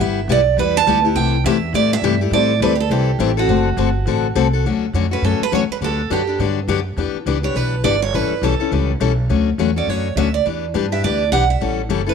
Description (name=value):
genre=acoustic string swing (jazz manouche)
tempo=207 BPM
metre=4/4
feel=swing 59% on 8ths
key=D major from 4.6 s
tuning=A4 = 440 Hz
part: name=picked steel-string acoustic guitar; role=melody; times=0.0-12.1 s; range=F#4 to A5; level=-20 LUFS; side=right 11 dB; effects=none
part: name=picked steel-string acoustic guitar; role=accompaniment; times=0.0-12.1 s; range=C3 to A4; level=-20 LUFS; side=left 12 dB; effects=none
part: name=upright bass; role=bass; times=0.0-12.1 s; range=F#1 to A2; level=-20 LUFS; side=right 1 dB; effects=none
room=light reverb, studio ambience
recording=1960s-style stereo with parts hard left and right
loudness=-15 LUFS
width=side -6 dB against mid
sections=0.0-4.6 A section; 4.6-12.1 B section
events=none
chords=0.0 G69; 1.2 C6; 2.3 Am7; 3.5 D7; 4.6 Dmaj7; 5.8 Gmaj7/D; 7.0 Em7; 8.1 A9; 9.3 Dmaj7; 10.5 Em7; 11.6 A7